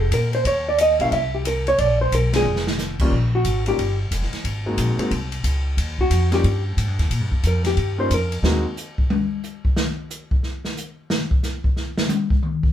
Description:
jazz, small-group swing and bop; 180 BPM; 4/4; swing 64% on 8ths; A4 = 439 Hz
hollow-body jazz guitar; melody; 0.0-4.0, 6.0-8.4 s; Gb4 to F5; -21 LUFS; right 1 dB
upright bass; bass; 0.0-8.6 s; F1 to Bb2; -21 LUFS; equal
open jazz drum kit; drums; 0.1-12.7 s; crash cymbal, hi-hat, kick drum, ride cymbal, rim click, snare drum, toms; -23 LUFS; left 1 dB
clear grand piano; accompaniment; 1.0-8.6 s; Eb2 to Gb4; -25 LUFS; equal
moderate studio reverb, RT60 0.5 s; band playing live in one room; -19 LUFS; side -10 dB against mid
0.0-3.1 A section; 3.1-12.7 B section
band accent 2.3; drum fill 2.4-2.8; hollow-body jazz guitar solo 3.1-12.7; drum solo 8.4-12.7
0.5 Eb7; 1.1 C7; 1.8 Bb7(no3); 3.1 Ebadd9 (rootless); 4.4 Ab9; 5.8 Ebadd9; 8.4 Ab9

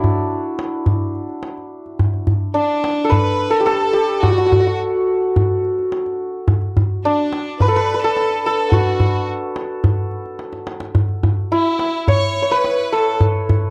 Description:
Persian modal ensemble; 107 BPM; 4/4; straight; D dastgah mahur; A4 = 440 Hz
santur; melody; 0.0-13.7 s; D4 to C#5; -21 LUFS; equal
tombak; percussion; 0.0-13.6 s; -20 LUFS; equal
bright chamber violin section; second line; 2.6-13.2 s; D4 to C#5; -27 LUFS; equal
light reverb; dry, close 1970s-style studio recording; -18 LUFS; mono
0.0-2.0 A section; 2.0-13.7 B section
drum fill 10.4-11.0

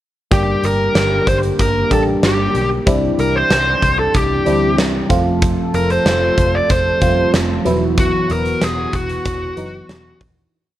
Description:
1980s-style pop; 94 BPM; 4/4; straight; A4 = 440 Hz
bluesy overdriven lead guitar; melody; 0.3-10.2 s; F#4 to D5; -18 LUFS; equal; distortion
FM electric piano; accompaniment; 0.3-10.6 s; E3 to G4; -20 LUFS; equal; chorus, phaser
chorused pulse-width pad; sustained chords; 0.3-10.5 s; B2 to A4; -25 LUFS; equal
vintage muted picked electric bass; bass; 0.3-10.4 s; Eb1 to D2; -22 LUFS; equal
huge arena drum kit; drums; 0.3-10.4 s; hi-hat, kick drum, snare drum; -19 LUFS; equal; gated reverb
light reverb, studio reverb; cassette tape; -13 LUFS; side -13 dB against mid
0.3-10.5 verse
fade-out 8.0-10.5
0.3 Gm; 2.9 Cadd9; 5.1 F; 7.7 Esus2

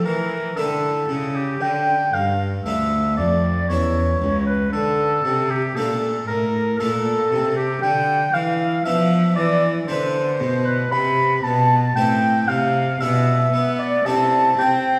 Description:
classical, baroque-style sonata movement with continuo; 58 BPM; 3/4; straight; D minor, A minor from 7.8 s; A4 = 440 Hz
mellow oboe; melody; 0.0-15.0 s; G4 to B5; -25 LUFS; equal
mellow hollow concert flute; second line; 0.0-15.0 s; G4 to B5; -25 LUFS; equal
harpsichord; accompaniment; 0.0-15.0 s; C#2 to A4; -28 LUFS; equal
warm cello; bass; 0.0-15.0 s; C#2 to C4; -25 LUFS; equal
wet recital hall reverb, RT60 1.4 s; recorded in a church or concert hall, vinyl crackle; -20 LUFS; mono
0.0-15.0 A section
0.0 A7; 1.6 Dm; 3.7 C#m7; 4.7 Dm; 7.8 Bdim/D; 9.9 E7/D; 10.9 Am; 13.0 E7/B; 14.1 Am/C

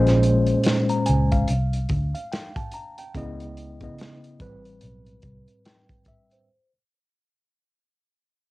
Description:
R&B, neo-soul; 72 BPM; 4/4; swing 60% on 16ths; A4 = 436 Hz
tine electric piano; accompaniment; 0.0-6.7 s; A2 to Bb5; -24 LUFS; equal; slow stereo tremolo, cassette tape
vintage muted fingered electric bass; bass; 0.0-5.5 s; A1 to D2; -23 LUFS; equal
crunchy breakbeat drum kit; drums; 0.1-6.5 s; hi-hat, kick drum, snare drum; -28 LUFS; equal; cassette tape
light reverb; home recording on cassette; -20 LUFS; side -19 dB against mid
0.0-6.5 A section
fade-out 0.0-6.5
0.0 Bbm9; 1.5 Csus2; 3.1 Dbm9; 4.4 Am9

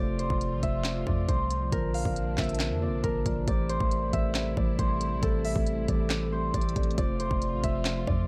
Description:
hip hop, trap; 137 BPM; 4/4; half-time; A phrygian; A4 = 440 Hz
concert harp; melody; 0.0-8.3 s; A4 to F5; -35 LUFS; equal; tape echo
mellow tine electric piano; accompaniment; 0.0-8.3 s; C3 to D5; -35 LUFS; equal
dark studio string section; sustained chords; 0.0-8.3 s; C3 to F4; -41 LUFS; equal
warm 808-style bass; bass; 0.0-8.3 s; F1 to F2; -34 LUFS; equal
trap drum kit; drums; 0.2-8.2 s; handclaps, hi-hat, kick drum, snare drum; -32 LUFS; equal
little or no reverb; -28 LUFS; mono
0.0-8.3 A section
0.0 F; 1.7 Bbadd9; 3.5 Am7; 7.0 F

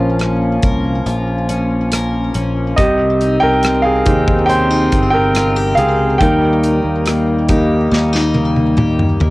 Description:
pop ballad; 70 BPM; 4/4; straight; A4 = 438 Hz
clear concert grand piano; accompaniment; 0.0-9.3 s; F3 to G5; -16 LUFS; right 1 dB; cassette tape
warm woodwind section; sustained chords; 0.0-9.3 s; Eb3 to Db4; -22 LUFS; left 1 dB; cassette tape
picked steel-string acoustic guitar; arpeggios; 0.0-9.3 s; Bb2 to Bb4; -21 LUFS; left 3 dB; cassette tape, tape echo
fingered electric bass; bass; 0.0-9.3 s; G1 to Eb2; -18 LUFS; equal
modern studio drum kit; drums; 0.2-9.3 s; hi-hat, kick drum, rim click, snare drum, toms; -17 LUFS; equal; cassette tape
little or no reverb; home recording on cassette; -12 LUFS; side -20 dB against mid
0.0-9.3 A section
grand piano solo 0.0-9.3; drum fill 7.9-9.3
0.0 Bbm; 2.8 Cm; 6.2 Eb

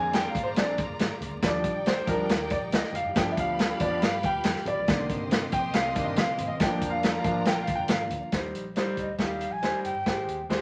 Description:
uptempo 1960s-style soul; 139 BPM; 4/4; straight; Eb major; A4 = 439 Hz
rich studio violin section; second line; 0.0-8.3 s; Eb4 to C6; -41 LUFS; equal
clear concert grand piano; accompaniment; 0.0-10.6 s; D3 to Ab5; -31 LUFS; equal
percussive tonewheel organ; sustained chords; 0.0-8.3 s; C3 to D5; -42 LUFS; equal
vintage muted fingered electric bass; bass; 0.0-10.6 s; F1 to G2; -42 LUFS; equal
congas; percussion; 0.0-8.2 s; -46 LUFS; equal
vintage drum kit; drums; 0.1-10.6 s; hi-hat, kick drum, snare drum; -30 LUFS; equal
breathy concert flute; melody; 9.0-10.5 s; Eb5 to Ab5; -34 LUFS; equal
wet studio reverb, RT60 0.5 s; vinyl crackle; -27 LUFS; mono
0.0-8.3 A section; 8.3-10.6 B section
grand piano solo 0.0-8.3
0.0 Bb7; 1.4 Ebmaj7; 3.2 G7; 4.9 Cm7; 6.6 Bb; 8.3 Eb6; 10.1 Abmaj7

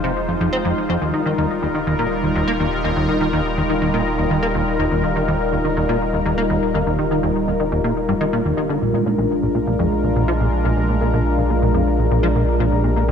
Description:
ambient, sequencer-driven space music; 123 BPM; 4/4; straight; A4 = 439 Hz
sweeping resonant pad; sustained chords; 0.0-13.1 s; G3 to C5; -20 LUFS; left 1 dB; chorus
plucky analog bass; riff; 0.0-13.1 s; Bb1 to C4; -21 LUFS; equal; analog chorus, ping-pong delay
warm sub bass; bass; 0.0-13.1 s; Eb1 to Bb1; -25 LUFS; equal
wet plate reverb, RT60 3.5 s; dark, warm production; -17 LUFS; side -7 dB against mid
0.0-13.1 A section
0.0 Fm7; 1.0 Ebadd9; 8.8 Bb7

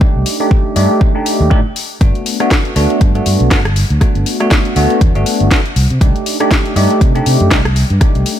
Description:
filtered disco house; 120 BPM; 4/4; swing 57% on 16ths; A4 = 437 Hz
bell-like tine electric piano; accompaniment; 0.0-8.4 s; A3 to G4; -16 LUFS; equal; phaser, vintage 12-bit sampler grit, sidechain pumping, low-pass filter
fingered electric bass; bass; 0.0-8.2 s; G1 to C3; -14 LUFS; equal; sidechain pumping, low-pass filter
electronic kick drum; drums; 0.0-8.1 s; -12 LUFS; equal; small room ambience
house drum kit; drums; 0.3-8.4 s; hi-hat, rim click, snare drum; -18 LUFS; left 1 dB; overdrive, sidechain pumping on hats, small room ambience
light reverb; -10 LUFS; side -10 dB against mid
0.0-8.4 A section
0.0 Cm6 (rootless); 2.0 Gmaj9; 5.8 Cm6

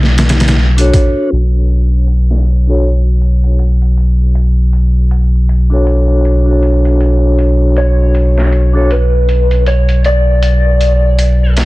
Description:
trip hop; 79 BPM; 4/4; swing 59% on 16ths; B minor; A4 = 437 Hz
electric slide guitar; melody; 0.0-0.5, 7.8-11.5 s; B4 to D5; -17 LUFS; equal; dub echo
round analog bass; bass; 0.0-11.7 s; B1; -10 LUFS; equal
trip hop sampler-style drum kit; drums; 0.0-11.7 s; hi-hat, kick drum, snare drum; -16 LUFS; equal; high-pass filter on hats, high-pass filter on snare, high-pass filter on kick, high-pass filter on room
vibraphone with medium mallets; accompaniment; 0.8-8.9 s; D4 to C#5; -17 LUFS; equal; tremolo, low-pass filter, tape echo
little or no reverb; dense, heavily limited modern master, vinyl crackle, low-pass filter; -9 LUFS; side -20 dB against mid
0.0-1.3 A section; 1.3-11.7 B section
filter sweep on vibraphone 1.3-11.7; filter sweep 1.3-11.7
0.0 Bm7

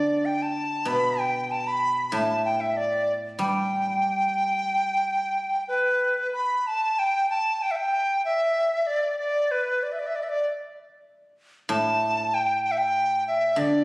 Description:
chinese traditional, Chinese chamber ensemble; 95 BPM; 4/4; rubato; G gong mode; A4 = 440 Hz
bright large dizi; melody; 0.0-13.8 s; B4 to B5; -23 LUFS; equal
guzheng; accompaniment; 0.0-5.3, 11.7-13.8 s; A2 to G3; -28 LUFS; equal
moderate scoring stage reverb, RT60 1.6 s; recorded on a phone in the room, studio reverb; -22 LUFS; side -22 dB against mid
0.0-6.0 A section; 6.0-13.8 B section

